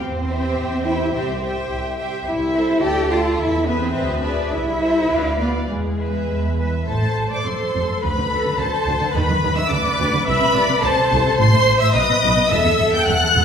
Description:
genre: quick classical-period movement for string orchestra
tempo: 106 BPM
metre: 2/4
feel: rubato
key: A minor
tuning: A4 = 438 Hz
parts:
  - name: warm studio violin section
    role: melody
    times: 0.0-13.4 s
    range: G#4 to G6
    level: -22 LUFS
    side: left 2 dB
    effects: none
  - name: dark studio cello section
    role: bass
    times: 0.0-13.4 s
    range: E2 to G4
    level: -22 LUFS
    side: right 1 dB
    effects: none
  - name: rich studio double bass section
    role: bass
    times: 0.0-13.4 s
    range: E1 to E2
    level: -23 LUFS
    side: right 1 dB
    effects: none
  - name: warm studio violin section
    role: second line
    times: 0.3-13.4 s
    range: A4 to A5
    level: -24 LUFS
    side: left 2 dB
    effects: none
  - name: rich studio viola section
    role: accompaniment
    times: 0.3-13.4 s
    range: G4 to E5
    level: -25 LUFS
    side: equal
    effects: none
room: wet recital hall reverb, RT60 1.3 s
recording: recorded in a church or concert hall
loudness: -16 LUFS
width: side -7 dB against mid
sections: 0.0-6.9 A section; 6.9-13.4 B section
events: none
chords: 0.0 C/E; 1.1 C; 2.3 Am/C; 2.8 Dm; 3.4 E; 3.9 E7/D; 4.5 Am/C; 5.1 Bdim/D; 5.7 E; 6.9 Am; 7.5 F; 8.0 D5; 9.1 B/D#; 9.7 Bm/D; 10.3 Am/C; 11.4 Am; 11.9 B; 12.5 Em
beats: | 0.01 0.58 | 1.14 1.70 | 2.26 2.82 | 3.38 3.95 | 4.52 5.10 | 5.69 6.28 | 6.87 7.45 | 8.02 8.58 | 9.14 9.71 | 10.27 10.83 | 11.39 11.95 | 12.51 13.08

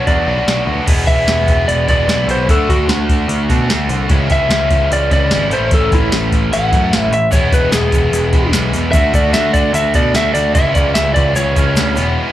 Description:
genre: indie rock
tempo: 149 BPM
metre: 4/4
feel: straight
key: unclear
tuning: A4 = 440 Hz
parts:
  - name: lightly driven lead guitar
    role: melody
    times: 0.0-12.1 s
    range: E4 to F#5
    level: -17 LUFS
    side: equal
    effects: slapback echo
  - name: biting overdriven guitar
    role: riff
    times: 0.0-12.3 s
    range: E2 to G#4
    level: -22 LUFS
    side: left 10 dB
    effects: slapback echo
  - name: cranked stack guitar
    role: riff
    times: 0.0-12.3 s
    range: A2 to F#4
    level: -21 LUFS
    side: right 7 dB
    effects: overdrive, lush chorus, slapback echo, analog delay
  - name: picked electric bass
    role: bass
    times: 0.1-12.2 s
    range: E1 to B2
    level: -18 LUFS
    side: equal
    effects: none
  - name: soft vintage rhythm box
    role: drums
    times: 0.1-12.1 s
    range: crash cymbal, hi-hat, kick drum, snare drum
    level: -16 LUFS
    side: equal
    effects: none
  - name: egg shaker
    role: percussion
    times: 7.3-12.1 s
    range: none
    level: -32 LUFS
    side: left 3 dB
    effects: none
room: little or no reverb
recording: live gig heard through the venue's PA, club reverb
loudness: -11 LUFS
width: side -13 dB against mid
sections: 0.9-12.3 A section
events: lead electric guitar solo 0.9-12.3; break 12.2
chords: 0.0 Bm; 0.9 E; 2.5 D; 4.1 C#m; 5.5 A; 7.3 E; 8.9 D; 10.6 C#m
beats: 0.07 0.47 | 0.88 1.28 1.68 2.09 | 2.49 2.89 3.30 3.70 | 4.10 4.50 4.91 5.31 | 5.71 6.12 6.52 6.92 | 7.33 7.73 8.13 8.54 | 8.94 9.34 9.74 10.15 | 10.55 10.96 11.36 11.77 | 12.17

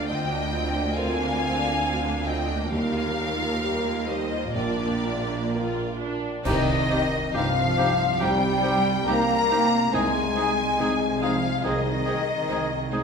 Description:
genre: cinematic, emotional film score for orchestra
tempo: 69 BPM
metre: 4/4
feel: rubato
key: C minor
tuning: A4 = 440 Hz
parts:
  - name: clear symphonic violin section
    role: melody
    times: 0.0-13.0 s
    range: D5 to Bb5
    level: -29 LUFS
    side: left 3 dB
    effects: none
  - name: rich symphonic violin section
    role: second line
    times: 0.0-13.0 s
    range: Eb4 to F5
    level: -35 LUFS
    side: left 2 dB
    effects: none
  - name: felt-muted upright piano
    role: accompaniment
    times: 0.0-13.0 s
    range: Bb1 to Bb4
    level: -32 LUFS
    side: left 2 dB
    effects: none
  - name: rich symphonic viola section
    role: accompaniment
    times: 0.0-13.0 s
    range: G3 to G4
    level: -33 LUFS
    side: right 2 dB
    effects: none
  - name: dark symphonic cello section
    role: bass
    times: 0.0-13.0 s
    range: D2 to Bb3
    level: -31 LUFS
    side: right 4 dB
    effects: none
  - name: rich symphonic double bass section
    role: bass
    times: 0.0-13.0 s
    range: Bb1 to Eb2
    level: -31 LUFS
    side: right 4 dB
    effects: none
  - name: small flute group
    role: second line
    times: 6.4-12.9 s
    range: Eb5 to Bb5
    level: -28 LUFS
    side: left 2 dB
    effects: none
  - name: dark clarinet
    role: second line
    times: 6.5-13.0 s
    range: Eb4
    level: -34 LUFS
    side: left 2 dB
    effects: none
  - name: warm oboe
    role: second line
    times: 6.5-13.0 s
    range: G4 to Ab4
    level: -32 LUFS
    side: right 1 dB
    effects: none
  - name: clear French horn section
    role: sustained chords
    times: 6.5-13.0 s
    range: Eb3 to Bb3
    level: -28 LUFS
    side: left 2 dB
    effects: none
  - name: clash cymbals and concert bass drum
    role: percussion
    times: 6.5-8.2 s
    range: none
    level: -32 LUFS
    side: right 1 dB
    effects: none
room: wet recital hall reverb, RT60 1.7 s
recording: recorded in a church or concert hall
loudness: -22 LUFS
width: side -5 dB against mid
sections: 0.0-6.4 A section; 6.4-13.0 B section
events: band accent 6.4-7.3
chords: 0.0 Bbadd9/D; 2.7 Ebadd9; 4.6 Bb; 6.4 Cm; 9.9 Ab/C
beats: 0.09 0.96 1.82 | 2.71 3.60 4.55 5.51 | 6.44 7.33 8.20 9.06 | 9.93 10.78 11.63 12.48

